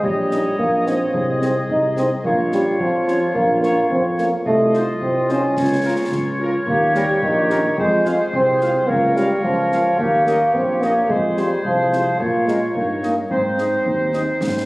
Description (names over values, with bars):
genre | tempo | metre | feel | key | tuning
military-style march for wind band | 108 BPM | 2/4 | straight | unclear | A4 = 440 Hz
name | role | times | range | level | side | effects
clear euphonium | second line | 0.0-14.7 s | Eb3 to Eb4 | -18 LUFS | equal | none
clear woodwind section | second line | 0.0-14.6 s | Eb4 to Eb5 | -24 LUFS | left 1 dB | none
mellow tuba | bass | 0.0-14.7 s | Bb1 to Bb2 | -24 LUFS | equal | none
concert bass drum and concert snare drum | drums | 0.0-14.7 s | none | -32 LUFS | left 1 dB | none
bright trumpet section | melody | 0.3-14.2 s | Bb4 to F5 | -35 LUFS | equal | none
mellow French horn section | accompaniment | 0.3-14.2 s | F3 to G4 | -30 LUFS | left 1 dB | none
room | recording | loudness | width
wet scoring stage reverb, RT60 2.1 s | recorded on a phone in the room, studio ambience, compression | -16 LUFS | side -20 dB against mid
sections
0.0-14.7 A section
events
none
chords
0.0 Eb7/Bb; 1.1 Ab/C; 2.2 Bbm; 4.5 F5/C; 5.6 Bbm/Db (rootless); 6.7 Eb7; 7.8 Fm; 8.9 Bbm/Db; 10.0 Eb7; 11.1 Fm; 12.2 Bbm; 12.8 Eb7/G; 13.3 Ab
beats
| 0.04 0.59 | 1.14 1.70 | 2.25 2.80 | 3.36 3.91 | 4.46 5.01 | 5.57 6.12 | 6.67 7.23 | 7.78 8.33 | 8.88 9.44 | 9.99 10.54 | 11.10 11.65 | 12.20 12.75 | 13.31 13.86 | 14.41